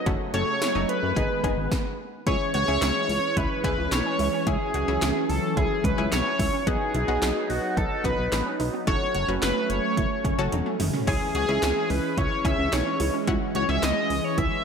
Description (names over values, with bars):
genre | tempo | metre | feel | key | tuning
synth-pop | 109 BPM | 4/4 | straight | C# minor | A4 = 440 Hz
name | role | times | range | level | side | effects
octave-doubled lead | melody | 0.0-14.6 s | F#4 to E5 | -27 LUFS | equal | chorus, analog delay
phased analog pad | sustained chords | 0.0-14.6 s | C#3 to D#4 | -30 LUFS | right 1 dB | phaser, chorus
analog pluck | accompaniment | 0.1-14.3 s | A3 to B4 | -33 LUFS | left 4 dB | chorus
wide unison pluck | arpeggios | 0.1-14.5 s | B3 to F#4 | -36 LUFS | right 4 dB | ensemble chorus, analog delay
chorused synth bass | bass | 0.1-14.5 s | E1 to F#2 | -28 LUFS | equal | none
80s electronic pad drums | drums | 0.1-14.5 s | crash cymbal, handclaps, hi-hat, kick drum, snare drum, toms | -29 LUFS | equal | gated reverb on snare and toms
room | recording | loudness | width
wet plate reverb, RT60 1.8 s | dreamy mix soaked in reverb | -22 LUFS | side -6 dB against mid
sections
0.0-2.3 A section; 2.3-14.6 B section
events
stop 1.7-2.3; drum fill 10.5-11.1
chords
0.1 F#m; 1.2 G#m; 2.3 C#m; 6.7 B; 8.9 F#m; 11.1 C#m